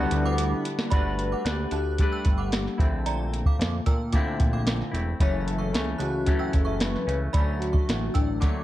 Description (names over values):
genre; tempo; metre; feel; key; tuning
indie pop, bedroom pop; 112 BPM; 4/4; straight; unclear; A4 = 439 Hz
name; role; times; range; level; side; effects
warm velvety synth lead; melody; 0.0-8.6 s; D4 to C#5; -33 LUFS; left 3 dB; wide subtle chorus, analog delay
dark upright piano; accompaniment; 0.0-0.9 s; A3 to E4; -38 LUFS; right 1 dB; none
semi-hollow electric guitar; accompaniment; 0.0-8.6 s; F#2 to B4; -30 LUFS; left 2 dB; lush chorus, warbly pitch drift
soft string machine; sustained chords; 0.1-0.9 s; G3 to B5; -39 LUFS; right 1 dB; none
fat analog bass; bass; 0.0-8.5 s; E1 to Bb2; -29 LUFS; equal; none
soft vintage rhythm box; drums; 0.1-8.6 s; hi-hat, kick drum, snare drum; -25 LUFS; equal; none
synth chime; second line; 0.3-8.5 s; D5 to F#6; -36 LUFS; right 4 dB; ensemble chorus, analog chorus, analog delay
room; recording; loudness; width
little or no reverb; dark, warm production; -23 LUFS; side -14 dB against mid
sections
0.9-8.6 A section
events
drum fill 0.0-0.9, 8.4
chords
0.0 Gmaj7; 0.9 Gmaj9; 2.8 Bbmaj9#11; 5.2 F#m7; 7.3 Dmaj7